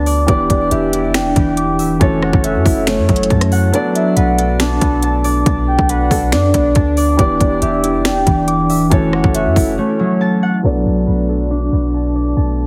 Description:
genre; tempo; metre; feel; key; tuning
hip hop, trap; 139 BPM; 4/4; half-time; B minor; A4 = 435 Hz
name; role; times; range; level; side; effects
soft octave-layered synth lead; second line; 0.0-10.6 s; C#5 to A5; -23 LUFS; equal; chorus, phaser, delay
dark grand piano; accompaniment; 0.0-12.7 s; E3 to D5; -23 LUFS; equal; none
mellow French horn section; sustained chords; 0.0-12.7 s; E3 to A4; -27 LUFS; equal; none
concert harp; arpeggios; 0.0-12.7 s; E3 to D6; -20 LUFS; equal; delay
warm 808-style bass; bass; 0.0-12.7 s; D1 to F#2; -20 LUFS; equal; none
trap drum kit; drums; 0.1-9.7 s; finger snaps, hi-hat, kick drum, rim click, snare drum; -19 LUFS; equal; none
room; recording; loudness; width
light reverb, small room ambience; heavily compressed radio sound, multiband compression, low-pass filter; -15 LUFS; mono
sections
0.0-10.6 A section; 10.6-12.7 B section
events
kick muted 3.7-4.2; drums muted 9.8-10.6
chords
0.3 Em7; 2.0 F#m7; 3.7 Bm7; 7.2 Em7; 8.9 F#m7; 10.6 Bm7

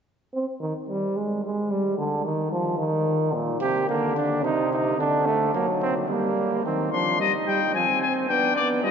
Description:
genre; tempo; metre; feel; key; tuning
classical, imitative canzona for brass ensemble; 110 BPM; 3/4; straight; C minor; A4 = 440 Hz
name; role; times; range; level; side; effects
clear euphonium; accompaniment; 0.3-8.9 s; Bb2 to C4; -24 LUFS; right 1 dB; none
mellow trumpet; second line; 3.6-8.9 s; A3 to G4; -25 LUFS; right 3 dB; none
clear trumpet; melody; 6.9-8.9 s; D5 to C6; -22 LUFS; left 8 dB; none
room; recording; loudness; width
wet cathedral reverb, RT60 7.3 s; nothing above 7.7 kHz; -22 LUFS; side -7 dB against mid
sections
0.1-6.6 A section; 6.6-8.9 B section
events
none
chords
0.1 N.C.; 3.3 Gm/Bb; 4.4 Cm; 5.0 D; 6.1 Gm; 6.6 Cm/Eb; 7.7 Fm; 8.3 G/B

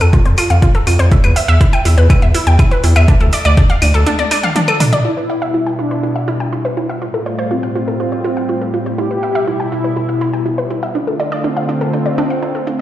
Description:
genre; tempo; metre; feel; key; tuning
melodic techno; 122 BPM; 4/4; straight; E phrygian; A4 = 440 Hz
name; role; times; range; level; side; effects
analog pluck; arpeggios; 0.0-12.7 s; D4 to G5; -18 LUFS; equal; chorus, cassette tape, sidechain pumping, digital delay
round analog bass; bass; 0.0-4.0 s; D2 to F2; -10 LUFS; equal; sidechain pumping
deep house drum kit; drums; 0.0-12.8 s; claves, hi-hat, toms; -19 LUFS; left 1 dB; overdrive, low-pass filter on hats, low-pass filter on perc, low-pass filter on toms
electronic kick drum; drums; 0.1-3.7 s; none; -11 LUFS; equal; overdrive
soft supersaw; melody; 5.0-12.8 s; C4 to G4; -20 LUFS; left 1 dB; sidechain pumping, low-pass filter, digital delay
lush unison pad; sustained chords; 5.1-12.8 s; A2 to F4; -21 LUFS; equal; chorus, sidechain pumping
room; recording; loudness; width
moderate recital hall reverb, RT60 1.6 s, digital ambience; played on a big sound system in a bare room, large studio reverb; -12 LUFS; side -13 dB against mid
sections
0.0-5.0 A section; 5.0-12.8 B section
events
filter sweep on synth arpeggio sound 0.0-5.0; break 4.1-5.0; drum fill 4.1-5.0; filter sweep on drum 5.0-12.8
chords
0.0 N.C.; 5.0 Em; 7.0 Fadd9; 9.0 Em; 11.0 Dm

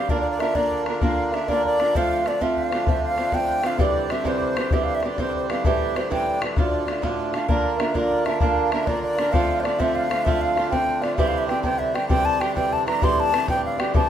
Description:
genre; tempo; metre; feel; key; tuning
celtic folk, Celtic slide; 130 BPM (dotted quarters); 12/8; straight; unclear; A4 = 439 Hz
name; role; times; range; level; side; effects
bright reedy baroque flute; melody; 0.0-14.1 s; C5 to C6; -24 LUFS; left 1 dB; none
fingerpicked swing-style acoustic guitar; accompaniment; 0.0-14.1 s; D2 to Bb4; -24 LUFS; right 3 dB; none
accordion; drone; 0.0-14.1 s; D3; -32 LUFS; left 5 dB; none
bodhran; percussion; 0.1-14.0 s; none; -26 LUFS; left 2 dB; none
room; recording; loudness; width
moderate studio reverb, RT60 0.6 s; minimal, uncompressed stereo recording; -20 LUFS; side -10 dB against mid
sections
0.0-7.5 A section; 7.5-14.1 A section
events
none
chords
0.1 Bb; 1.9 F; 3.8 C; 5.6 Am7; 6.6 Dm; 7.5 Bb; 9.3 F; 11.2 C; 13.0 Am7

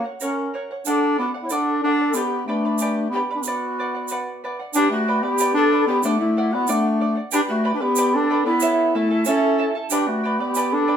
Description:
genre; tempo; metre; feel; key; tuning
andean folk, Andean ensemble; 93 BPM; 2/4; straight; unclear; A4 = 440 Hz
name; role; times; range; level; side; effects
warm bass clarinet; melody; 0.0-11.0 s; A3 to E4; -21 LUFS; equal; none
charango; accompaniment; 0.0-11.0 s; E4 to B5; -25 LUFS; right 2 dB; none
breathy mellow large quena; second line; 0.2-11.0 s; D4 to C#5; -24 LUFS; left 3 dB; none
egg shaker; percussion; 0.2-10.7 s; none; -29 LUFS; right 6 dB; none
room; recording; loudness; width
wet studio reverb, RT60 0.6 s; band playing live in one room; -18 LUFS; side -8 dB against mid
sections
0.0-4.7 A section; 4.7-11.0 B section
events
none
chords
0.0 F#; 0.9 D; 2.1 G; 3.4 Bm; 4.7 G; 6.0 D; 7.3 G; 8.6 A; 9.9 G

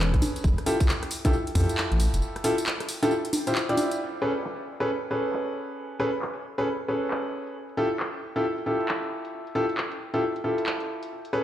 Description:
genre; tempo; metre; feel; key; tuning
UK garage, two-step garage; 135 BPM; 4/4; swing 63% on 16ths; unclear; A4 = 440 Hz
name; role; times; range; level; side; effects
clear grand piano; stabs; 0.0-11.4 s; C#4 to D5; -27 LUFS; equal; dub echo
dark detuned saw bass; bass; 0.0-2.2 s; E1 to F2; -23 LUFS; equal; none
garage drum kit; drums; 0.0-11.3 s; congas, handclaps, hi-hat, rim click, tambourine; -31 LUFS; right 1 dB; low-pass filter on perc, small room ambience, low-pass filter on hats, low-pass filter on snare
electronic kick drum; drums; 0.1-1.7 s; none; -22 LUFS; equal; small room ambience
room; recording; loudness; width
moderate plate reverb, RT60 2.2 s; played on a big sound system in a bare room, large studio reverb; -25 LUFS; side -12 dB against mid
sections
0.0-4.0 A section; 4.0-11.4 B section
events
filter sweep on drum 4.0-11.4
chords
0.4 Fmaj9; 4.0 Amaj9; 7.6 Fmaj9

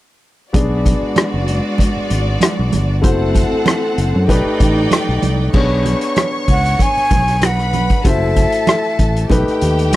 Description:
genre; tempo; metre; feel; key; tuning
lush 1970s-style soul; 96 BPM; 4/4; swing 54% on 16ths; B dorian; A4 = 438 Hz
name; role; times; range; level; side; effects
clear studio string section; second line; 0.5-10.0 s; G#3 to C#6; -22 LUFS; equal; none
warm grand piano; accompaniment; 0.5-10.0 s; A3 to D5; -20 LUFS; left 2 dB; none
fingered electric bass; bass; 0.5-10.0 s; F#1 to F#2; -17 LUFS; equal; none
vintage drum kit; drums; 0.5-10.0 s; crash cymbal, hi-hat, kick drum, rim click; -17 LUFS; equal; none
congas; percussion; 0.5-10.0 s; none; -23 LUFS; right 4 dB; none
breathy jazz flute; melody; 6.5-9.3 s; E5 to G#5; -18 LUFS; equal; none
room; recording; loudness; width
small room reverb; none; -13 LUFS; side -16 dB against mid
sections
0.5-5.5 A section; 5.5-10.0 B section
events
none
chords
0.5 Bm6; 3.0 F#m7b5; 4.3 B7alt; 5.5 Bm69; 8.0 F#m7b5; 9.3 Baug7

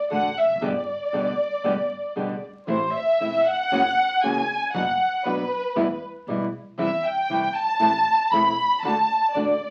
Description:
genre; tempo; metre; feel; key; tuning
tango; 117 BPM; 4/4; rubato; G major; A4 = 441 Hz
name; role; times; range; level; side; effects
warm studio violin section; second line; 0.0-9.7 s; B4 to B5; -24 LUFS; equal; none
nylon-string guitar; accompaniment; 0.1-9.5 s; B2 to G4; -29 LUFS; equal; none
upright bass; bass; 0.1-9.6 s; E1 to E2; -43 LUFS; equal; none
room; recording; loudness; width
wet small room reverb, RT60 0.5 s; very old 78 rpm record, vinyl crackle; -23 LUFS; mono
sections
0.0-9.7 A section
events
violin section solo 0.0-9.7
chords
0.0 D; 0.6 G; 2.7 Am; 3.7 F#7; 4.7 Bm/F#; 5.8 Em; 6.8 C/E; 7.8 Am; 8.8 D

